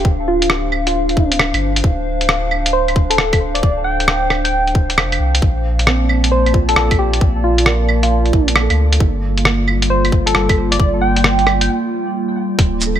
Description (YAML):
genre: future garage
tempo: 134 BPM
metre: 4/4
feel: swing 65% on 16ths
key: unclear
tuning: A4 = 436 Hz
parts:
  - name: soft struck synth lead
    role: melody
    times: 0.0-11.7 s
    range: F4 to G5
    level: -20 LUFS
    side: right 1 dB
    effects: chorus, phaser, tape echo
  - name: warbly tape-like pad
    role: sustained chords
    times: 0.0-13.0 s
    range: G3 to A5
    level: -21 LUFS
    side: left 1 dB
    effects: chorus, built-in reverb, sidechain pumping
  - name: warm sub bass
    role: bass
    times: 0.0-13.0 s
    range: D1 to D2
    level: -18 LUFS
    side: equal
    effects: sidechain pumping
  - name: electronic kick drum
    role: drums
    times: 0.0-12.7 s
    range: none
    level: -15 LUFS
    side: equal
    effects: small room ambience
  - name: lo-fi sampler-style drum kit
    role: drums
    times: 0.4-13.0 s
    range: cabasa, claves, hi-hat, rim click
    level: -17 LUFS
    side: right 1 dB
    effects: small room ambience
  - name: felt-muted upright piano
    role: accompaniment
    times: 5.9-13.0 s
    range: C4 to D5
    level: -27 LUFS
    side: right 5 dB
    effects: sidechain pumping, tape echo
room: light reverb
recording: none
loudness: -13 LUFS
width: side -10 dB against mid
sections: 0.0-12.6 A section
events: break 11.7-12.6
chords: 0.0 Dm7; 5.4 Bbmaj7; 9.0 Gm7